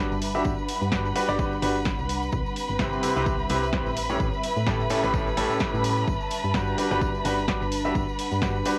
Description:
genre	piano house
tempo	128 BPM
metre	4/4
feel	swing 56% on 16ths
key	G major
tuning	A4 = 440 Hz
part	rich chamber violin section	sustained chords	0.0-8.8 s	B4 to B5	-34 LUFS	equal	sidechain pumping, cassette tape
part	clear concert grand piano	riff	0.0-8.8 s	A2 to E5	-30 LUFS	equal	sidechain pumping, cassette tape, tape echo
part	solid FM bass	bass	0.0-8.6 s	G1 to A2	-33 LUFS	equal	sidechain pumping
part	ethereal airy pad	texture	0.0-8.8 s	G3 to B5	-35 LUFS	equal	ensemble chorus, built-in reverb, tremolo, sidechain pumping, cassette tape
part	tambourine	percussion	0.1-8.8 s	none	-48 LUFS	equal	none
part	punchy analog drum machine	drums	0.2-8.8 s	hi-hat, snare drum	-34 LUFS	equal	cassette tape
part	electronic kick drum	drums	0.5-8.5 s	none	-33 LUFS	equal	cassette tape
room	moderate booth ambience, RT60 0.2 s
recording	home recording on cassette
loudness	-26 LUFS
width	mono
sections	0.0-8.8 A section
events	none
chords	0.0 Gmaj7; 4.0 A7; 6.1 Gmaj7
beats	| 0.45 0.92 1.39 1.86 | 2.33 2.79 3.26 3.73 | 4.20 4.67 5.14 5.61 | 6.08 6.54 7.01 7.48 | 7.95 8.42

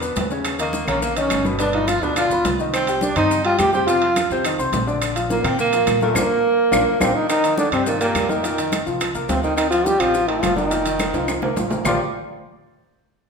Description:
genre	Afro-Cuban jazz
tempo	210 BPM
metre	4/4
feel	straight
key	Bb major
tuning	A4 = 440 Hz
part	clear grand piano	accompaniment	0.0-12.0 s	Bb2 to C6	-24 LUFS	left 2 dB	none
part	upright bass	bass	0.0-12.0 s	F1 to Bb2	-30 LUFS	equal	none
part	bongos	percussion	0.0-11.9 s	none	-31 LUFS	left 2 dB	none
part	congas	percussion	0.0-11.9 s	none	-31 LUFS	equal	none
part	maracas	percussion	0.0-11.9 s	none	-34 LUFS	left 4 dB	none
part	timbales	percussion	0.2-11.9 s	none	-28 LUFS	right 5 dB	none
part	claves	percussion	0.5-11.9 s	none	-31 LUFS	equal	none
part	clear trombone	melody	0.6-12.0 s	A3 to G4	-21 LUFS	left 1 dB	none
part	warm tenor saxophone	second line	0.6-12.0 s	Bb2 to G4	-23 LUFS	right 4 dB	none
room	wet recital hall reverb, RT60 1.3 s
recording	recorded in a church or concert hall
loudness	-17 LUFS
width	side -5 dB against mid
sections	0.0-7.3 A section; 7.3-11.9 B section; 11.9-13.0 C section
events	drum fill 6.2-7.3, 11.0-11.9; band accent 6.2-7.3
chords	0.5 Eb5; 1.6 G7; 2.7 Cm; 3.9 F5; 5.0 Bb; 7.3 Cm7; 8.4 F7sus4; 9.6 Dm7; 10.7 F7sus4; 11.9 Bb69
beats	0.17 | 0.45 0.74 1.02 1.31 | 1.59 1.88 2.17 2.45 | 2.74 3.02 3.31 3.59 | 3.88 4.16 4.45 4.73 | 5.02 5.30 5.59 5.87 | 6.16 6.44 6.73 7.01 | 7.30 7.58 7.87 8.15 | 8.44 8.72 9.01 9.29 | 9.58 9.86 10.15 10.43 | 10.72 11.00 11.29 11.57 | 11.86

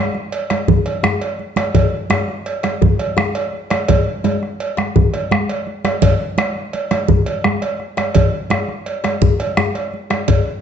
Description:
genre	west african traditional, West African drum ensemble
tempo	112 BPM (dotted quarters)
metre	12/8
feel	straight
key	none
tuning	none
part	bombo	percussion	0.1-10.4 s	none	-20 LUFS	equal	none
part	congas	percussion	0.1-10.4 s	none	-21 LUFS	right 7 dB	none
part	djembe	percussion	0.1-10.4 s	none	-20 LUFS	left 6 dB	none
part	cowbell	percussion	0.3-10.4 s	none	-23 LUFS	right 4 dB	none
room	wet recital hall reverb, RT60 1.3 s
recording	nothing above 8.0 kHz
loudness	-15 LUFS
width	side -8 dB against mid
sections	0.0-10.6 A section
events	none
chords	none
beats	0.14 0.68 1.21 | 1.75 2.28 2.81 3.35 | 3.88 4.42 4.95 5.49 | 6.02 6.55 7.09 7.62 | 8.15 8.69 9.22 9.75 | 10.28

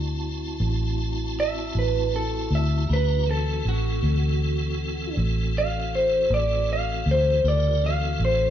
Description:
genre	blues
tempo	53 BPM (dotted quarters)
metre	12/8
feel	straight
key	unclear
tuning	A4 = 440 Hz
part	tonewheel organ	sustained chords	0.0-8.5 s	C#3 to Bb5	-31 LUFS	equal	slow rotary speaker, chorus vibrato
part	vintage muted fingered electric bass	bass	0.0-8.5 s	A1 to D2	-24 LUFS	equal	none
part	electric guitar through a small old amp	melody	1.4-8.5 s	F#4 to F5	-25 LUFS	right 1 dB	none
room	light reverb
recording	band playing live in one room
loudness	-21 LUFS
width	side -10 dB against mid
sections	0.0-8.5 A section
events	clean electric guitar solo 0.0-8.5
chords	0.0 D9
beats	0.61 1.75 | 2.89 4.03 5.17 6.31 | 7.45

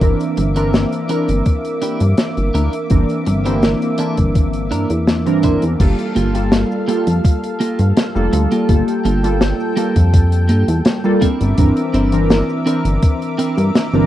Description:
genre	vaporwave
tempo	83 BPM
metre	4/4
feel	straight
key	G dorian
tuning	A4 = 438 Hz
part	warbly lo-fi synth keys	accompaniment	0.0-14.1 s	E3 to Bb4	-19 LUFS	equal	wide subtle chorus, analog delay
part	lush unison pad	sustained chords	0.0-14.1 s	Bb3 to D6	-25 LUFS	equal	chorus
part	clean electric guitar	riff	0.0-13.6 s	Bb3 to C5	-22 LUFS	right 2 dB	wide subtle chorus, analog delay
part	chorused synth bass	bass	0.0-14.1 s	F1 to G2	-16 LUFS	equal	tube saturation
part	electronic kick drum	drums	0.0-13.2 s	none	-14 LUFS	equal	vintage 12-bit sampler grit
part	modern studio drum kit	drums	0.0-14.1 s	cabasa, crash cymbal, hi-hat, snare drum	-19 LUFS	left 1 dB	vintage 12-bit sampler grit
room	small room ambience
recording	rough home demo mix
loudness	-13 LUFS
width	side -13 dB against mid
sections	0.0-5.8 A section; 5.8-14.1 B section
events	none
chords	0.0 C9/G; 5.8 Gm9; 11.2 C9/G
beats	| 0.01 0.74 1.46 2.18 | 2.91 3.63 4.35 5.08 | 5.80 6.52 7.24 7.97 | 8.69 9.41 10.13 10.86 | 11.58 12.30 13.03 13.75

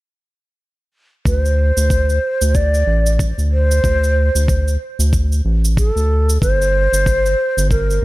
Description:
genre	organic downtempo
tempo	93 BPM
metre	4/4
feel	swing 59% on 16ths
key	unclear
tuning	A4 = 440 Hz
part	breathy mellow ney	melody	1.3-8.0 s	A4 to D5	-19 LUFS	equal	digital delay
part	round analog bass	bass	1.3-8.0 s	G1 to D2	-15 LUFS	equal	none
part	cabasa	drums	1.3-8.0 s	none	-26 LUFS	right 4 dB	overdrive
part	electronic kick drum	drums	1.3-7.9 s	none	-18 LUFS	equal	none
room	little or no reverb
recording	none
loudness	-14 LUFS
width	side -19 dB against mid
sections	1.3-8.0 A section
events	none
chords	1.3 D5; 6.4 Gm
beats	| 1.26 1.90 2.55 3.19 | 3.84 4.48 5.13 5.77 | 6.42 7.06 7.71

